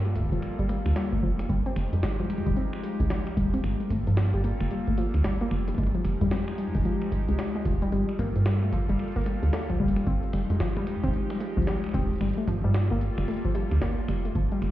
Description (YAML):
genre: IDM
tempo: 112 BPM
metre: 4/4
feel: swing 62% on 16ths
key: unclear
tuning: A4 = 441 Hz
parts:
  - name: warbly tape-like pad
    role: sustained chords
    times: 0.0-14.7 s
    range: F3 to A4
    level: -33 LUFS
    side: left 1 dB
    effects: chorus, built-in reverb
  - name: woody FM bass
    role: bass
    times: 0.0-14.7 s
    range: Eb1 to G2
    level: -26 LUFS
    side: right 1 dB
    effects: none
  - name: warbly dusty pluck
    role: arpeggios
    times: 0.1-14.6 s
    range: F3 to F4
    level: -31 LUFS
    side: left 2 dB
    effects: chorus, tape echo
  - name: jungle sampler-style drum kit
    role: drums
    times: 0.1-14.7 s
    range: finger snaps, hi-hat, snare drum, toms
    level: -37 LUFS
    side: equal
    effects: tape echo
  - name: electronic kick drum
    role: drums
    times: 0.2-14.5 s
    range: none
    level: -30 LUFS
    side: right 1 dB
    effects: none
room: light reverb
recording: heard muffled through a wall, stone room reverb, EQ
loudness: -24 LUFS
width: side -14 dB against mid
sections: 0.0-14.7 A section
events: none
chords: 0.0 Gm9; 1.5 Fm9; 3.6 Gm9; 5.8 Fm9; 7.9 Gm9; 10.1 Fm9; 12.2 Gm9